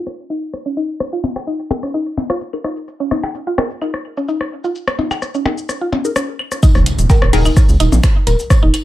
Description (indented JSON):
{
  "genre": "minimal techno",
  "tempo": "128 BPM",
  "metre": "4/4",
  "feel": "straight",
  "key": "unclear",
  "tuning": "A4 = 441 Hz",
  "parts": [
    { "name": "booming analog drum machine", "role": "drums", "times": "0.1-8.8 s", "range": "cabasa, finger snaps, hi-hat", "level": "-26 LUFS", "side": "right 1 dB", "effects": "none" },
    { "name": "electronic rim click, percussion blips and claves", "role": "percussion", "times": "0.1-8.8 s", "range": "none", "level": "-20 LUFS", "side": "left 2 dB", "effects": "tape echo" },
    { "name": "mallet-like synth pluck", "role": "riff", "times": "0.3-8.7 s", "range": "Db4 to Bb4", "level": "-22 LUFS", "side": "equal", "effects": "chorus, sidechain pumping, dub echo" },
    { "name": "filtered dub chord stab", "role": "stabs", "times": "1.7-7.4 s", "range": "Eb4 to Bb4", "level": "-23 LUFS", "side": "left 3 dB", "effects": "phaser, tape echo" },
    { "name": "crunchy breakbeat drum kit", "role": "drums", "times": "6.6-8.8 s", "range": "hi-hat, snare drum, tambourine", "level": "-33 LUFS", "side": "right 1 dB", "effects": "sidechain pumping on hats, high-pass filter on hats, high-pass filter on snare, sidechain pumping on perc, high-pass filter on perc, high-pass filter on room" },
    { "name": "electronic kick drum", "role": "drums", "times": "6.6-8.6 s", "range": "none", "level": "-11 LUFS", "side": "equal", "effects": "none" },
    { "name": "impact", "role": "sound effects", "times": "6.6-8.5 s", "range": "none", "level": "-23 LUFS", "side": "equal", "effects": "none" },
    { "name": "rubbery square bass", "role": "bass", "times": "6.8-8.7 s", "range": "Eb1 to Db2", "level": "-14 LUFS", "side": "equal", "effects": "sidechain pumping" }
  ],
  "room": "light reverb",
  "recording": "low-pass filter",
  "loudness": "-14 LUFS",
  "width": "side -15 dB against mid",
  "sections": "0.0-6.6 A section; 6.6-8.8 B section",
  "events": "filter sweep 0.0-6.6; drop 6.6-8.8; impact 6.6-8.5",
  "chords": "0.0 Ebsus4; 6.6 N.C."
}